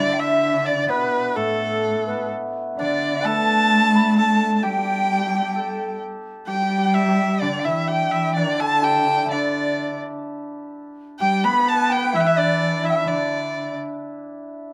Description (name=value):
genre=chinese traditional, Chinese chamber ensemble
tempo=64 BPM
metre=2/4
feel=rubato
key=D zhi mode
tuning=A4 = 437 Hz
part: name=clear erhu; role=melody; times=0.0-13.8 s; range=A4 to B5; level=-25 LUFS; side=equal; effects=none
part: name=hammered dulcimer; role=second line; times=0.0-14.7 s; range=A3 to B4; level=-29 LUFS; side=equal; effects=none
part: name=large dizi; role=second line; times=0.0-13.7 s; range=A4 to B5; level=-27 LUFS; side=equal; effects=none
part: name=warm cello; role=second line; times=0.0-13.7 s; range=A2 to B3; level=-26 LUFS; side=equal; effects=none
room=moderate studio reverb, RT60 0.6 s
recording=none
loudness=-21 LUFS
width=mono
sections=0.0-10.3 A section; 10.3-14.7 B section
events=none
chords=none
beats=| 0.89 1.83 | 2.77 3.71 | 4.63 5.55 | 6.48 7.42 | 8.36 9.31 | 10.27 11.21 | 12.14 13.06 | 13.98